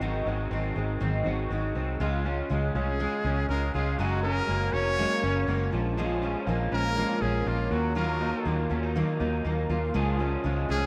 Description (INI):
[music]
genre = indie pop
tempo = 121 BPM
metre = 4/4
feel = straight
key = Db major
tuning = A4 = 441 Hz
[part]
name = picked steel-string acoustic guitar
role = accompaniment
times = 0.0-10.9 s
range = Ab2 to Bb4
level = -34 LUFS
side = equal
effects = none
[part]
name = electric guitar through a small old amp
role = arpeggios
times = 0.0-10.9 s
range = Eb3 to Ab4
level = -34 LUFS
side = equal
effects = analog chorus, delay
[part]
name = vintage muted fingered electric bass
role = bass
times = 0.0-10.9 s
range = F1 to Eb2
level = -32 LUFS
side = equal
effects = none
[part]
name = bright trumpet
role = melody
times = 2.7-10.9 s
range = F4 to Db5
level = -34 LUFS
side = equal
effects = delay
[sound]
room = light reverb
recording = rough home demo mix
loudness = -28 LUFS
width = mono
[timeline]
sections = 0.0-2.0 A section; 2.0-10.9 B section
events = none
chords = 0.0 Ab7; 2.0 Db; 4.0 Gbadd9; 5.7 Bbm7; 7.7 Ebmadd9; 9.9 Db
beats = | 0.01 0.51 1.01 1.51 | 2.00 2.50 3.00 3.49 | 3.99 4.49 4.98 5.48 | 5.98 6.47 6.97 7.47 | 7.96 8.46 8.96 9.45 | 9.95 10.45